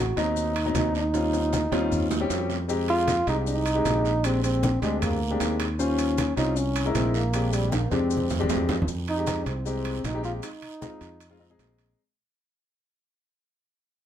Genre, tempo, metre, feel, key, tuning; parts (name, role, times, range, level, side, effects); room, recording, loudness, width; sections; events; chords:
Afro-Cuban jazz; 155 BPM; 4/4; straight; A4 = 440 Hz
mellow trombone; melody; 0.0-11.6 s; G3 to F#4; -27 LUFS; right 1 dB; plate reverb
modern bright fingered electric bass; bass; 0.0-11.9 s; A1 to F2; -28 LUFS; equal
warm concert grand piano; accompaniment; 0.2-12.0 s; F#3 to C5; -30 LUFS; left 4 dB
congas; percussion; 0.2-12.0 s; -31 LUFS; left 1 dB
guiro; percussion; 0.2-12.0 s; -40 LUFS; right 7 dB
maracas; percussion; 0.2-12.0 s; -40 LUFS; left 6 dB
timbales; percussion; 0.2-12.0 s; -34 LUFS; right 7 dB
moderate studio ambience, RT60 0.5 s; heard from further back in the room; -23 LUFS; side -10 dB against mid
0.0-8.9 A section; 8.9-12.0 B section
drum fill 1.1-2.7, 7.7-8.9; fade-out 8.9-12.0
0.0 Adim7 (rootless); 1.1 Eb13; 2.7 Fm7; 4.2 Bb13; 5.8 Eb13; 6.6 C7alt; 7.3 Bb13; 8.9 Fm7; 10.4 Bb9sus4